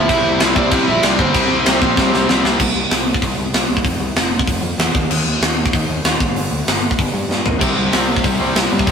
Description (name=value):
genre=punk rock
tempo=191 BPM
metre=4/4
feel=straight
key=unclear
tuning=A4 = 440 Hz
part: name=biting lead guitar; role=melody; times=0.0-2.2 s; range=C4 to E5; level=-18 LUFS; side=right 2 dB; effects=overdrive
part: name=cranked stack guitar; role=riff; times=0.0-2.6, 7.6-8.9 s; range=F2 to C4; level=-25 LUFS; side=right 1 dB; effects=none
part: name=overdriven electric guitar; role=riff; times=0.0-2.6, 7.6-8.9 s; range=F2 to C4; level=-22 LUFS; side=left 5 dB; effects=none
part: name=tight distorted guitar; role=riff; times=0.0-2.6, 7.6-8.9 s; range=F2 to C4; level=-21 LUFS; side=left 1 dB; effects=distortion
part: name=fuzz picked electric bass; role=bass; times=0.0-8.9 s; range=F1 to C3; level=-22 LUFS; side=equal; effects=overdrive
part: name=tight metal drum kit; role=drums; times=0.1-8.9 s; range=crash cymbal, hi-hat, kick drum, snare drum, toms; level=-16 LUFS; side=equal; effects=none
room=moderate stone room reverb, RT60 1.2 s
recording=rough rehearsal-room recording, warm saturation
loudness=-14 LUFS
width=side -6 dB against mid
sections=0.0-2.6 A section; 2.6-8.9 B section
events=drum fill 2.0-2.6, 7.3-7.6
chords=0.1 C; 2.6 N.C.; 3.8 F5; 4.9 N.C.; 6.2 G5; 7.6 C5